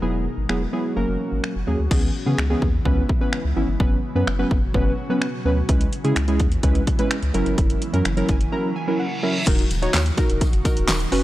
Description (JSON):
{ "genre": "dance-pop", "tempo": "127 BPM", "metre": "4/4", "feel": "straight", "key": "unclear", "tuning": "A4 = 440 Hz", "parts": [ { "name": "warm analog keys", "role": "accompaniment", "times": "0.0-11.2 s", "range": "E3 to A#5", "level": "-24 LUFS", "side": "right 1 dB", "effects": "chorus, sidechain pumping" }, { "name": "ethereal airy pad", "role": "sustained chords", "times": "0.0-11.2 s", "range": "A#2 to F#4", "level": "-32 LUFS", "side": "equal", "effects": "ensemble chorus, built-in reverb, sidechain pumping" }, { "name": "warm sub bass", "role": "bass", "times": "0.0-11.2 s", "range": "D#1 to C#3", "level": "-23 LUFS", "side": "equal", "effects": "sidechain pumping" }, { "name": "pop drum kit", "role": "drums", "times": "0.5-11.2 s", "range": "crash cymbal, finger snaps, handclaps, hi-hat, kick drum, snare drum", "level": "-21 LUFS", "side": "equal", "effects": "none" }, { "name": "reverse cymbal", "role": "sound effects", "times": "8.8-9.5 s", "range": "none", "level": "-30 LUFS", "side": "right 2 dB", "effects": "none" }, { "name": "tambourine", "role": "percussion", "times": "9.7-11.2 s", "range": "none", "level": "-37 LUFS", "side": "left 3 dB", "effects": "none" } ], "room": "digital ambience", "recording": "dry, gritty hardware recording, transformer saturation", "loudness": "-19 LUFS", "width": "side -15 dB against mid", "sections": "0.0-1.9 A section; 1.9-9.5 B section; 9.5-11.2 C section", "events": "synth keys fill 8.1-9.5; break 8.5-9.5; reverse cymbal 8.8-9.5", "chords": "0.0 Eadd9; 1.0 F#; 1.9 C#m7; 3.8 F#sus4; 5.7 C#m7; 7.3 F#7; 9.5 D#m", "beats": "| 0.02 0.49 0.96 1.44 | 1.91 2.38 2.85 3.33 | 3.80 4.27 4.74 5.22 | 5.69 6.16 6.63 7.11 | 7.58 8.05 8.52 9.00 | 9.47 9.94 10.41 10.89" }